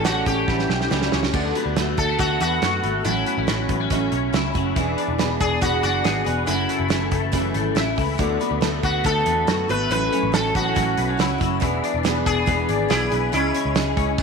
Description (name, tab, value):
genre	jangly indie pop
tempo	140 BPM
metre	4/4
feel	straight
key	unclear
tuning	A4 = 440 Hz
part	sitar	melody	0.0-14.2 s	E4 to B4	-24 LUFS	equal	none
part	picked steel-string acoustic guitar	accompaniment	0.0-14.2 s	F#2 to G#4	-26 LUFS	right 9 dB	none
part	twelve-string electric guitar	arpeggios	0.0-14.2 s	F#2 to G#4	-25 LUFS	left 14 dB	ensemble chorus, tape echo
part	vintage muted picked electric bass	bass	0.0-14.1 s	E1 to F#2	-26 LUFS	left 1 dB	none
part	loose indie drum kit	drums	0.0-14.2 s	crash cymbal, hi-hat, kick drum, snare drum	-25 LUFS	right 4 dB	none
room	moderate echo chamber reverb, RT60 1.4 s, small room ambience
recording	1960s-style stereo with parts hard left and right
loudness	-19 LUFS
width	side -5 dB against mid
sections	0.0-1.3 A section; 1.3-14.2 B section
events	drum fill 0.5-1.3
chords	0.0 A7; 1.3 D6; 3.0 A6; 4.8 E7; 6.5 F#m7; 8.2 D6; 9.9 A6; 11.6 E7; 13.3 C#m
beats	0.05 0.48 0.91 | 1.33 1.76 2.19 2.62 | 3.05 3.48 3.91 4.33 | 4.76 5.19 5.62 6.05 | 6.48 6.91 7.33 7.76 | 8.19 8.62 9.05 9.48 | 9.91 10.34 10.76 11.19 | 11.62 12.05 12.47 12.90 | 13.33 13.76 14.18